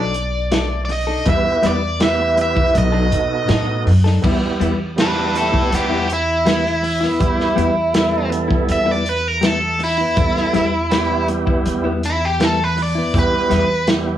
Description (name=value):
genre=straight-eighth soul blues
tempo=81 BPM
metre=4/4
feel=straight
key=E harmonic minor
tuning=A4 = 440 Hz
part: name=biting overdriven guitar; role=melody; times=0.0-13.9 s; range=B3 to E5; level=-19 LUFS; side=equal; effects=plate reverb
part: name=tonewheel organ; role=accompaniment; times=0.0-14.2 s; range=G3 to B4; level=-22 LUFS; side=right 5 dB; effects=slow rotary speaker, overdrive, plate reverb
part: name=direct-recorded clean electric guitar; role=stabs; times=0.0-14.1 s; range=F#3 to A4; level=-24 LUFS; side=left 5 dB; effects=plate reverb
part: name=upright bass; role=bass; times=0.0-14.2 s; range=B1 to B2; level=-22 LUFS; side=equal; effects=none
part: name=crunchy breakbeat drum kit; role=drums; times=0.1-14.1 s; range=crash cymbal, hi-hat, kick drum, snare drum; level=-21 LUFS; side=equal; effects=none
room=moderate studio reverb, RT60 0.8 s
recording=small room ambience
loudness=-15 LUFS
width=side -11 dB against mid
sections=0.0-4.2 A section; 4.2-14.2 B section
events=overdriven electric guitar solo 4.2-14.2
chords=0.0 B7#9; 1.3 Em; 2.7 B7#9; 4.2 Em